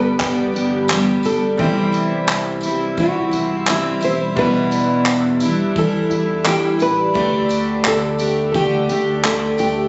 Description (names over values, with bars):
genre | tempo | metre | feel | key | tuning
acoustic pop | 86 BPM | 4/4 | swing 60% on 16ths | unclear | A4 = 440 Hz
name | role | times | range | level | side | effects
flamenco guitar | melody | 0.0-9.9 s | E4 to C5 | -24 LUFS | equal | delay
bright upright piano | accompaniment | 0.0-9.9 s | G3 to D5 | -31 LUFS | equal | none
picked steel-string acoustic guitar | accompaniment | 0.0-9.9 s | E2 to G4 | -21 LUFS | equal | double-tracked
granular cloud pad | sustained chords | 0.0-9.9 s | G3 to E6 | -30 LUFS | equal | built-in reverb, phaser
upright bass | bass | 0.0-9.9 s | G1 to E2 | -31 LUFS | equal | none
compact cocktail drum kit | drums | 0.2-9.8 s | handclaps, kick drum, tambourine | -25 LUFS | equal | none
tambourine | percussion | 0.2-9.8 s | none | -38 LUFS | equal | none
room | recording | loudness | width
moderate studio reverb, RT60 0.6 s | recorded on a phone in the room, studio reverb, compression, nothing above 7.9 kHz | -18 LUFS | mono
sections
0.0-9.9 A section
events
none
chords
0.0 G; 1.6 C; 4.4 Em7; 7.2 Dsus4